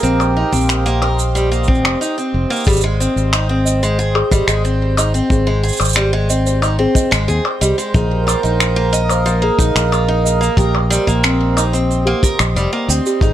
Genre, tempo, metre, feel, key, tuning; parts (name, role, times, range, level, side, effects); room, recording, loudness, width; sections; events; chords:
folktronica; 91 BPM; 4/4; straight; Ab major; A4 = 441 Hz
warm flugelhorn; melody; 0.0-1.3 s; G4; -25 LUFS; right 2 dB; ping-pong delay
pedal harmonium; sustained chords; 0.0-13.3 s; Bb3 to G5; -22 LUFS; right 4 dB
picked acoustic archtop guitar; arpeggios; 0.0-13.3 s; F3 to Eb5; -19 LUFS; left 1 dB; ping-pong delay
fingered electric bass; bass; 0.0-13.3 s; F1 to Eb2; -17 LUFS; equal
electronic shaker, percussion blips and finger snaps; drums; 0.0-13.3 s; -19 LUFS; equal
backwards swelling texture; texture; 0.0-2.7 s; F5 to F6; -38 LUFS; right 2 dB
kick drum; drums; 0.5-13.3 s; -16 LUFS; equal
small celesta; second line; 2.7-13.3 s; G4 to G5; -23 LUFS; left 1 dB; digital delay
light reverb, studio reverb; -13 LUFS; side -12 dB against mid
0.0-2.7 A section; 2.7-13.3 B section
0.0 Eb6/Bb; 2.7 Abmaj7; 7.9 Bbsus4; 10.6 Eb6/Bb